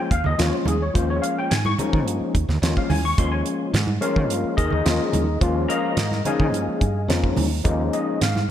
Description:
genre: electric jazz fusion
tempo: 107 BPM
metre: 4/4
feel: straight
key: unclear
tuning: A4 = 439 Hz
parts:
  - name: overdriven tine electric piano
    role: accompaniment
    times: 0.0-8.5 s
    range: F3 to Db6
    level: -23 LUFS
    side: left 3 dB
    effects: ensemble chorus
  - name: woody fretless electric bass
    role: bass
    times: 0.1-8.4 s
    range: Eb2 to Eb3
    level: -23 LUFS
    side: right 1 dB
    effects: none
  - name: damped 70s drum kit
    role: drums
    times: 0.1-8.4 s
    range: hi-hat, kick drum, snare drum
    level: -24 LUFS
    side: right 1 dB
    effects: none
  - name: congas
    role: percussion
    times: 0.2-8.5 s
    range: none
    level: -30 LUFS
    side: right 4 dB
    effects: none
room: moderate plate reverb, RT60 2.2 s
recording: bright 1980s-style digital production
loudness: -19 LUFS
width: side -10 dB against mid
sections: 0.0-8.5 A section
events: none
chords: 0.0 Eb9sus4

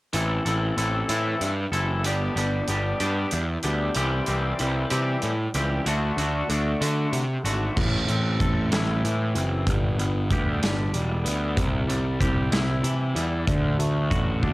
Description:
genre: quiet-loud alternative rock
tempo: 63 BPM (dotted quarters)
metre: 6/8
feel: straight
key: A dorian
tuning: A4 = 440 Hz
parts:
  - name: twangy electric guitar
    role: arpeggios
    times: 0.1-14.5 s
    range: G2 to A4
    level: -27 LUFS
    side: left 1 dB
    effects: lush chorus, cassette tape, analog delay
  - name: fuzz picked electric bass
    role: bass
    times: 0.1-14.5 s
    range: E1 to D3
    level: -25 LUFS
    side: equal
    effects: overdrive
  - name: big rock drum kit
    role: drums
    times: 0.1-14.5 s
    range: crash cymbal, hi-hat, kick drum, snare drum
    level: -28 LUFS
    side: equal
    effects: cassette tape
room: studio reverb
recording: home recording on cassette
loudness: -22 LUFS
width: side -19 dB against mid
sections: 0.1-7.8 A section; 7.8-14.5 B section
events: none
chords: 0.1 Am; 2.0 G; 4.0 C; 5.9 D; 7.8 Am; 9.7 G; 11.6 C; 13.5 D

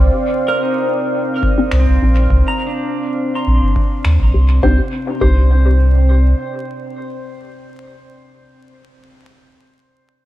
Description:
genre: ambient dub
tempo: 103 BPM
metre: 4/4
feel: straight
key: C minor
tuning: A4 = 440 Hz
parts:
  - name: deep dark ambient pad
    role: sustained chords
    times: 0.0-7.7 s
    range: C4 to G5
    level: -21 LUFS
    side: equal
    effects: chorus, built-in reverb
  - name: soft dub sub bass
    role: bass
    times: 0.0-6.3 s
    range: G1 to Eb2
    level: -11 LUFS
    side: equal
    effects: none
  - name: pedal steel guitar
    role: arpeggios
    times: 0.5-7.7 s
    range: C4 to C6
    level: -24 LUFS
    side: right 1 dB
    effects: low-pass filter, tape echo
  - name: electronic kick drum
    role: drums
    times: 1.4-5.4 s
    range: none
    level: -19 LUFS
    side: equal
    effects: overdrive
  - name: filtered dub chord stab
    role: stabs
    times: 1.6-8.2 s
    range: C4 to G4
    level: -21 LUFS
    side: left 3 dB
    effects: phaser, analog chorus, cassette tape, dub echo
  - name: finger snaps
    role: drums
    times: 1.7-4.2 s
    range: none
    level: -30 LUFS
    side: left 1 dB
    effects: dub echo
room: light reverb, digital ambience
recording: vinyl crackle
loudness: -12 LUFS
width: side -14 dB against mid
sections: 0.0-4.6 A section; 4.6-7.0 B section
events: filter sweep on synth stab 0.0-4.6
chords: 0.0 Cmadd9

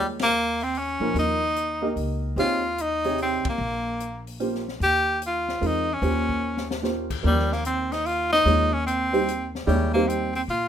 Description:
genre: modal jazz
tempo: 148 BPM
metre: 3/4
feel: swing 64% on 8ths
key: unclear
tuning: A4 = 439 Hz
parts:
  - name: bright tenor saxophone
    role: melody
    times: 0.0-10.7 s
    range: G3 to G4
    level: -23 LUFS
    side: equal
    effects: none
  - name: warm baby grand piano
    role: accompaniment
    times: 0.0-10.3 s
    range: C3 to Eb5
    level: -27 LUFS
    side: right 2 dB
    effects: none
  - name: upright bass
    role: bass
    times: 0.0-10.7 s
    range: Bb1 to Bb2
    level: -28 LUFS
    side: left 1 dB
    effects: none
  - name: open jazz drum kit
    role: drums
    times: 0.2-10.6 s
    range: crash cymbal, hi-hat, kick drum, ride cymbal, snare drum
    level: -36 LUFS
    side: left 4 dB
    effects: none
room: light reverb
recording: minimal, uncompressed stereo recording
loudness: -22 LUFS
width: side -9 dB against mid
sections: 0.0-10.7 A section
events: band accent 0.1, 3.4; drum fill 6.4-6.8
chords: 0.0 Cm/Eb (rootless); 2.4 Eb13; 7.2 Cm/Eb

